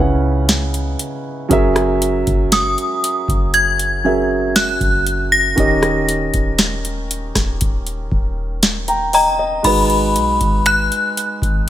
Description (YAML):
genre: contemporary R&B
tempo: 59 BPM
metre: 4/4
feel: straight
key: unclear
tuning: A4 = 440 Hz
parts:
  - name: warm concert grand piano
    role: accompaniment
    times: 0.0-11.7 s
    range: C#3 to A#5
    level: -19 LUFS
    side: right 2 dB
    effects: none
  - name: soft 808-style bass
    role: bass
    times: 0.0-11.7 s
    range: D#1 to C#2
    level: -22 LUFS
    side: equal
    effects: none
  - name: booming analog drum machine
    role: drums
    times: 0.5-11.7 s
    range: crash cymbal, finger snaps, hi-hat, kick drum, rim click, snare drum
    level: -18 LUFS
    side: equal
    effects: none
  - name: synth chime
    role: melody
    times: 2.5-11.7 s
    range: A#5 to A#6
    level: -17 LUFS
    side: left 1 dB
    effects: ensemble chorus
room: digital ambience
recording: none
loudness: -14 LUFS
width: side -12 dB against mid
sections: 0.0-9.6 A section; 9.6-11.7 B section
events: none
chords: 0.0 C#m7; 1.5 F#7; 5.6 D#7; 9.6 G#m7